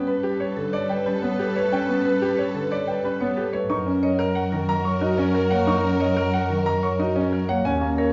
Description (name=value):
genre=classical, minimalist pattern music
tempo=182 BPM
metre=6/4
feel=straight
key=unclear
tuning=A4 = 442 Hz
part: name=clear clarinet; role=second line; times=0.0-8.1 s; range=A#4 to C#5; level=-34 LUFS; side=equal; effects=none
part: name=warm concert grand piano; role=accompaniment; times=0.0-8.0 s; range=D3 to D#4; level=-30 LUFS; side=equal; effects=none
part: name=rich symphonic string section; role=sustained chords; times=0.0-8.1 s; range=F#4 to C#5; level=-36 LUFS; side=equal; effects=none
part: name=marimba with medium hard mallets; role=arpeggios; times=0.0-8.1 s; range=C#4 to D#5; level=-28 LUFS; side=equal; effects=none
part: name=rich double bass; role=bass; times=0.0-8.1 s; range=D#2 to G2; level=-29 LUFS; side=equal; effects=none
part: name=bright concert grand piano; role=melody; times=0.1-8.1 s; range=G4 to C#6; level=-30 LUFS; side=equal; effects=none
room=wet large studio reverb, RT60 1.1 s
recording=heard from further back in the room, nothing above 7.5 kHz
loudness=-23 LUFS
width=mono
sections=0.0-8.1 A section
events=none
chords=0.0 Gadd9; 3.7 F#